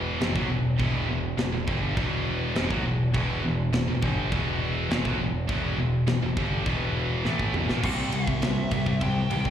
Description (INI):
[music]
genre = heavy metal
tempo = 102 BPM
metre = 4/4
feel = straight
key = E minor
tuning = A4 = 440 Hz
[part]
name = scooped high-gain guitar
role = riff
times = 0.0-9.5 s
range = E2 to C4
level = -27 LUFS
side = equal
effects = distortion, slapback echo
[part]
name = growling picked electric bass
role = bass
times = 0.0-9.5 s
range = E1 to C2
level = -29 LUFS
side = equal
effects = overdrive
[part]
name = tight metal drum kit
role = drums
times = 0.2-9.5 s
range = china cymbal, crash cymbal, kick drum, ride cymbal, snare drum, toms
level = -31 LUFS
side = equal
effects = none
[part]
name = high-gain lead guitar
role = melody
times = 7.9-9.5 s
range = E5 to G5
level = -32 LUFS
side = left 1 dB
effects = distortion, slapback echo, ping-pong delay
[sound]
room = little or no reverb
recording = live gig heard through the venue's PA, recital hall reverb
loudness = -24 LUFS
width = side -9 dB against mid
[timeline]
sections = 0.0-7.8 A section; 7.8-9.5 B section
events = drum fill 7.3-7.8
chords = 0.0 Em; 7.8 C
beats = 0.21 | 0.80 1.39 1.97 2.56 | 3.15 3.73 4.32 4.91 | 5.50 6.08 6.67 7.26 | 7.84 8.43 9.02